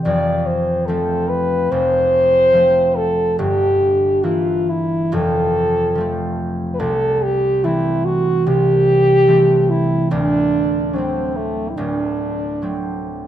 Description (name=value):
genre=classical, romantic duo for French horn and harp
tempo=72 BPM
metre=4/4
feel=rubato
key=unclear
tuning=A4 = 440 Hz
part: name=mellow French horn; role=melody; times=0.0-13.0 s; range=A3 to D5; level=-16 LUFS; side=equal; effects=none
part: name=concert harp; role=accompaniment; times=0.0-13.3 s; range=D1 to E4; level=-20 LUFS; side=right 1 dB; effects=none
room=wet recital hall reverb, RT60 1.8 s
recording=none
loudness=-15 LUFS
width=side -11 dB against mid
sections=0.0-13.3 A section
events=none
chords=0.0 F; 3.4 Edim/G; 5.1 F; 6.8 Am7/C; 10.1 D7